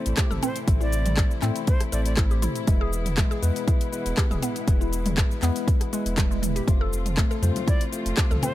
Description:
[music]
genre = afro house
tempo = 120 BPM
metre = 4/4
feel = swing 53% on 16ths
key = unclear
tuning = A4 = 440 Hz
[part]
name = rich studio string section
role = sustained chords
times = 0.0-8.5 s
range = B2 to F4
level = -36 LUFS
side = equal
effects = sidechain pumping
[part]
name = bell-like tine electric piano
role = stabs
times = 0.0-8.5 s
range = G#3 to C5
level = -32 LUFS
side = moving between left 9 dB and left 2 dB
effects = auto-pan, sidechain pumping, tape echo
[part]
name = warm sub bass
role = bass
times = 0.1-8.4 s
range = D1 to A2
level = -26 LUFS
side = equal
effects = sidechain pumping
[part]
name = house drum kit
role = drums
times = 0.1-8.5 s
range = cabasa, handclaps, hi-hat, rim click, toms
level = -30 LUFS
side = equal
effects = overdrive
[part]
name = mallet-like synth pluck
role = arpeggios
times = 0.2-8.5 s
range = G3 to A4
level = -32 LUFS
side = equal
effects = chorus, phaser, sidechain pumping, tape echo
[part]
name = electronic kick drum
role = drums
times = 0.2-8.3 s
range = none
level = -22 LUFS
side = equal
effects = overdrive
[part]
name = breathy bright jazz flute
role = melody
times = 0.4-2.1, 7.7-8.5 s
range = C5 to D5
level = -35 LUFS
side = right 2 dB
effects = tape echo
[part]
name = congas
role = percussion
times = 7.4-8.5 s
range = none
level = -32 LUFS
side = left 2 dB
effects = none
[sound]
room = little or no reverb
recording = none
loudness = -21 LUFS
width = side -14 dB against mid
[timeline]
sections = 0.0-8.5 A section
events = none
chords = 0.0 Am; 2.7 E; 6.7 F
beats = 0.18 | 0.68 1.18 1.68 2.18 | 2.68 3.18 3.68 4.18 | 4.68 5.18 5.68 6.18 | 6.68 7.18 7.68 8.18

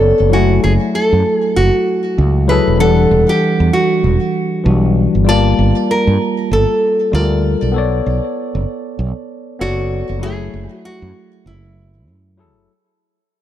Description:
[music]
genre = sunset chillout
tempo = 97 BPM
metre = 4/4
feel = swing 57% on 16ths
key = unclear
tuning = A4 = 440 Hz
[part]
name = nylon-string guitar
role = melody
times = 0.0-12.4 s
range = E4 to D5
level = -16 LUFS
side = equal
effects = digital delay
[part]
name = tine electric piano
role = accompaniment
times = 0.0-12.7 s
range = E3 to A5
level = -17 LUFS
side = moving between left 7 dB and right 8 dB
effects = auto-pan, digital delay
[part]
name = fretless electric bass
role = bass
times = 0.0-12.7 s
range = E1 to G2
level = -15 LUFS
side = right 1 dB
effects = none
[sound]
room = light reverb, small room ambience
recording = dark, warm production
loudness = -12 LUFS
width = side -11 dB against mid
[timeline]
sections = 0.0-12.7 A section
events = fade-out 6.1-12.7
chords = 0.3 F#m9; 2.8 Em9; 5.3 Gm9; 7.8 Bm9; 10.2 F#m9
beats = | 0.33 0.95 1.57 2.19 | 2.81 3.42 4.04 4.66 | 5.28 5.90 6.52 7.13 | 7.75 8.37 8.99 9.61 | 10.23 10.85 11.46 12.08

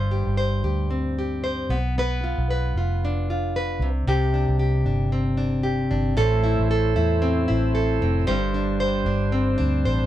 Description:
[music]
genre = pop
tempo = 114 BPM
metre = 4/4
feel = swing 60% on 16ths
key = A minor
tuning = A4 = 440 Hz
[part]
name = nylon-string guitar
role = accompaniment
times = 0.0-10.1 s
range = G2 to C5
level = -23 LUFS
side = equal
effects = none
[part]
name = vintage muted fingered electric bass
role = bass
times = 0.0-10.1 s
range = F1 to E2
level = -24 LUFS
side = equal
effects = none
[part]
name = bright tonewheel organ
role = sustained chords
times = 6.2-10.1 s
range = G3 to C5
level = -30 LUFS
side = right 3 dB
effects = overdrive, slow rotary speaker
[sound]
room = light reverb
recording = dry, close 1970s-style studio recording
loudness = -20 LUFS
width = side -12 dB against mid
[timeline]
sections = 0.0-6.2 A section; 6.2-10.1 B section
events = none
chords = 0.0 Gsus4; 1.7 Bdim; 3.8 Csus2; 6.2 Am; 8.3 Gsus4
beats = 0.37 0.90 1.42 | 1.95 2.48 3.01 3.54 | 4.07 4.59 5.12 5.65 | 6.17 6.70 7.23 7.75 | 8.28 8.80 9.33 9.86

